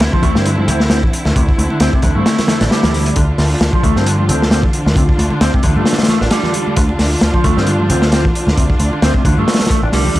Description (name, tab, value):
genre	breakbeat, breaks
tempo	133 BPM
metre	4/4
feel	swing 56% on 16ths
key	D minor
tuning	A4 = 440 Hz
part	rich symphonic string section	sustained chords	0.0-10.2 s	D3 to F4	-20 LUFS	equal	sidechain pumping
part	deep dub picked electric bass	bass	0.0-10.2 s	A1 to G2	-16 LUFS	equal	none
part	crunchy breakbeat drum kit	drums	0.0-10.2 s	hi-hat, kick drum, snare drum	-15 LUFS	equal	none
part	mellow electric guitar	riff	0.1-10.2 s	C3 to D4	-19 LUFS	equal	overdrive, tape echo
part	congas	percussion	0.1-10.1 s	none	-24 LUFS	right 1 dB	none
room	light reverb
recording	dry, gritty hardware recording, vinyl crackle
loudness	-11 LUFS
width	side -16 dB against mid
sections	0.0-10.2 A section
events	kick drops out 2.3-3.2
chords	0.0 Dm7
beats	0.00 0.45 0.90 | 1.35 1.80 2.26 2.71 | 3.16 3.61 4.06 4.51 | 4.96 5.41 5.87 6.32 | 6.77 7.22 7.67 8.12 | 8.57 9.02 9.47 9.93